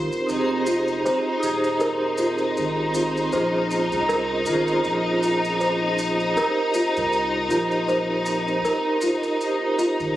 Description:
trip hop; 79 BPM; 4/4; swing 55% on 16ths; A4 = 441 Hz
vibraphone with medium mallets; accompaniment; 0.0-10.2 s; Db4 to C5; -26 LUFS; right 2 dB; tremolo, tape echo
clear studio string section; sustained chords; 0.0-10.2 s; Eb4 to C5; -25 LUFS; left 1 dB
worn celesta; arpeggios; 0.0-10.2 s; F4 to C5; -26 LUFS; equal; digital delay
round analog bass; bass; 0.0-10.2 s; Eb1 to C2; -33 LUFS; equal
backwards swelling texture; texture; 0.0-10.2 s; C4 to C5; -33 LUFS; right 3 dB; built-in reverb
maracas; percussion; 0.1-10.1 s; -38 LUFS; right 1 dB
light reverb, studio ambience; recorded on a phone in the room, vinyl crackle, compression; -20 LUFS; side -13 dB against mid
0.0-10.2 A section
0.0 Abmaj9; 3.3 Bbm9; 6.4 Cm7; 9.4 Abmaj9
| 0.29 1.05 1.81 2.57 | 3.33 4.09 4.85 5.61 | 6.37 7.13 7.89 8.65 | 9.41

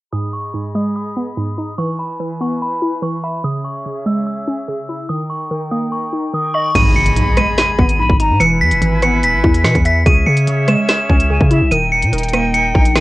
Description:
hip hop, drill; 145 BPM; 4/4; half-time; G# harmonic minor; A4 = 440 Hz
metallic FM bell; melody; 0.1-13.0 s; B5 to E7; -19 LUFS; equal; chorus, low-pass filter, cassette tape, tape echo
glassy wavetable pluck; accompaniment; 0.1-13.0 s; G#2 to E5; -20 LUFS; equal; chorus, low-pass filter, cassette tape
bright small flute group; sustained chords; 0.1-13.0 s; C#4 to B5; -24 LUFS; equal; cassette tape
long sustained 808-style bass; bass; 6.8-13.0 s; D#1 to C#3; -16 LUFS; equal
drill drum kit; drums; 6.8-13.0 s; crash cymbal, hi-hat, kick drum, rim click, snare drum; -16 LUFS; equal; vintage 12-bit sampler grit, cassette tape
impact; sound effects; 6.8-8.4 s; -22 LUFS; equal
jazz flute; second line; 8.0-8.4, 11.3-11.7 s; E5 to B5; -22 LUFS; left 2 dB; cassette tape, tape echo
little or no reverb; home recording on cassette, low-pass filter; -13 LUFS; side -18 dB against mid
0.1-6.8 A section; 6.8-13.0 B section
filter sweep 0.1-6.8; impact 6.8-8.4
0.1 G#m; 1.8 E; 3.4 C#m; 5.1 D#; 6.8 G#m; 8.4 E; 10.1 C#m; 11.7 D#
| 0.13 0.54 0.96 1.37 | 1.78 2.20 2.61 3.03 | 3.44 3.85 4.27 4.68 | 5.09 5.51 5.92 6.34 | 6.75 7.16 7.58 7.99 | 8.40 8.82 9.23 9.65 | 10.06 10.47 10.89 11.30 | 11.72 12.13 12.54 12.96

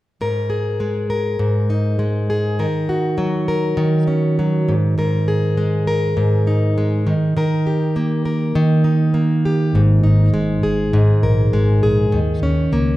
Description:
acoustic pop; 101 BPM; 4/4; straight; A4 = 442 Hz
fingerpicked plugged-in steel-string acoustic guitar; accompaniment; 0.2-13.0 s; G#2 to A#4; -16 LUFS; equal
vintage muted fingered electric bass; bass; 9.7-13.0 s; G#1 to D#2; -19 LUFS; left 1 dB
wet recital hall reverb, RT60 1.6 s; recorded in a church or concert hall; -15 LUFS; side -16 dB against mid
0.2-9.7 A section; 9.7-13.0 B section
0.2 G#sus2; 2.6 D#m7; 4.7 G#sus2; 7.1 D#; 9.7 G#sus2; 12.1 D#7(no3)
| 0.21 0.80 1.40 2.00 | 2.59 3.19 3.78 4.38 | 4.97 5.57 6.17 6.76 | 7.36 7.95 8.55 9.15 | 9.74 10.34 10.93 11.53 | 12.12 12.72

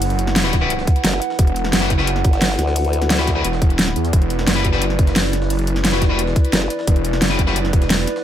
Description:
dark technical drum and bass; 175 BPM; 4/4; straight; E minor; A4 = 440 Hz
dark analog pad; sustained chords; 0.0-8.2 s; E4 to F#5; -24 LUFS; right 1 dB; wide subtle chorus, sidechain pumping
wide detuned saw bass; bass; 0.0-8.1 s; E1 to E2; -20 LUFS; equal; chorus, overdrive
dubstep drum kit; drums; 0.0-8.1 s; hi-hat, snare drum; -20 LUFS; equal; overdrive
jungle sampler-style drum kit; drums; 0.0-8.2 s; hi-hat, snare drum; -32 LUFS; equal
distorted electric guitar; stabs; 0.4-7.6 s; G3 to B4; -25 LUFS; left 3 dB; overdrive, digital delay
electronic kick drum; drums; 0.5-7.8 s; -16 LUFS; equal
formant-sweep wobble bass; bass; 1.0-3.4, 6.5-6.7 s; F#1 to D2; -20 LUFS; equal; chorus
light reverb; -15 LUFS; side -10 dB against mid
0.0-8.2 A section
0.0 Emadd9
| 0.02 0.36 0.70 1.05 | 1.39 1.73 2.07 2.42 | 2.76 3.10 3.45 3.79 | 4.13 4.47 4.82 5.16 | 5.50 5.85 6.19 6.53 | 6.87 7.22 7.56 7.90

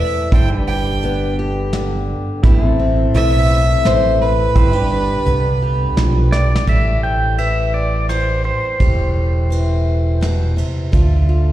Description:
honky-tonk and classic country; 85 BPM; 3/4; straight; A minor; A4 = 440 Hz
bright fiddle; second line; 0.0-6.3 s; B4 to G5; -20 LUFS; right 5 dB; slapback echo
picked acoustic archtop guitar; accompaniment; 0.0-11.5 s; E2 to G4; -22 LUFS; left 4 dB
pedal steel guitar; sustained chords; 0.0-6.7 s; C4 to B4; -25 LUFS; right 2 dB; wide subtle chorus
fingered electric bass; bass; 0.3-11.5 s; E1 to D2; -16 LUFS; right 1 dB
soft brush drum kit; drums; 0.3-11.1 s; hi-hat, kick drum, ride cymbal, rim click, snare drum; -18 LUFS; right 1 dB
pedal steel guitar; melody; 6.3-10.5 s; C5 to G5; -21 LUFS; equal; slapback echo
light reverb; live gig heard through the venue's PA, recital hall reverb; -14 LUFS; side -14 dB against mid
0.0-6.7 A section; 6.7-11.5 B section
fiddle solo 0.0-6.7; drum fill 6.3-6.7
0.3 G; 2.4 Am; 4.6 G; 6.7 Am7; 10.9 Dm
| 0.32 1.03 1.73 | 2.44 3.14 3.85 | 4.56 5.26 5.97 | 6.68 7.38 8.09 | 8.80 9.51 10.22 | 10.93

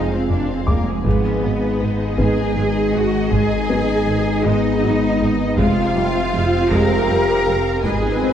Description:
cinematic, hybrid orchestral and electronic film score; 53 BPM (dotted quarters); 6/8; straight; A4 = 440 Hz
warm symphonic violin section; melody; 0.0-8.3 s; D#5 to F5; -32 LUFS; left 4 dB
warm symphonic violin section; second line; 0.0-8.3 s; Ab4 to A#5; -29 LUFS; left 4 dB
warm symphonic viola section; accompaniment; 0.0-8.3 s; F#3 to B4; -24 LUFS; right 1 dB
dark trombone section; sustained chords; 0.0-8.3 s; C3 to C4; -28 LUFS; right 1 dB
glassy FM pad; sustained chords; 0.0-8.3 s; F3 to Ab5; -26 LUFS; left 2 dB; ensemble chorus, built-in reverb
warm French horn section; sustained chords; 0.0-8.3 s; C3 to G4; -25 LUFS; left 3 dB
rich symphonic cello section; bass; 0.0-8.3 s; Ab3 to A#4; -23 LUFS; right 2 dB
swelling detuned saw bass; bass; 0.0-8.3 s; F1 to G#1; -26 LUFS; equal
felt-muted upright piano; texture; 0.0-8.3 s; B3 to D6; -29 LUFS; left 1 dB; tape echo
rich symphonic double bass section; bass; 0.3-8.3 s; F1 to G#1; -25 LUFS; right 3 dB
taiko ensemble; drums; 0.3-8.3 s; -24 LUFS; equal
swell; sound effects; 8.0-8.3 s; -22 LUFS; left 5 dB
moderate scoring stage reverb, RT60 1.8 s; worn, warbling old tape, cassette tape, warbly pitch drift; -16 LUFS; side -9 dB against mid
0.0-8.3 A section
drum fill 0.0-1.1; swell 8.0
0.0 Fm; 1.1 G#m; 5.6 Fm
| 1.05 2.18 | 3.32 4.45 | 5.58 6.71 | 7.84

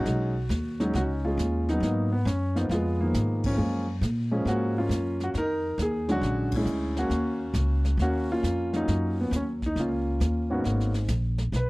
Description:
jazz piano trio; 136 BPM; 4/4; swing 68% on 8ths; Eb minor; A4 = 440 Hz
warm grand piano; melody; 0.0-11.7 s; Ab2 to Db5; -27 LUFS; equal; slapback echo
upright bass; bass; 0.0-11.7 s; Ab1 to Bb2; -27 LUFS; equal
jazz brush drum kit; drums; 0.1-11.7 s; brushed snare drum, hi-hat, kick drum, ride cymbal, snare drum; -37 LUFS; right 1 dB
light reverb; dry, close 1970s-style studio recording; -24 LUFS; side -22 dB against mid
0.0-10.6 A section; 10.6-11.7 B section
band accent 3.4, 6.5; grand piano solo 10.6-11.7
0.1 B69; 1.8 Abm9; 2.7 Db13/F (rootless); 3.6 Gbmaj7; 5.3 Ebm11; 6.2 Bb7alt; 7.1 Ebm7; 10.6 Abm11
| 0.05 0.49 0.94 1.38 | 1.82 2.26 2.70 3.14 | 3.58 4.03 4.47 4.91 | 5.35 5.79 6.23 6.67 | 7.11 7.55 8.00 8.44 | 8.88 9.32 9.76 10.20 | 10.64 11.08 11.52

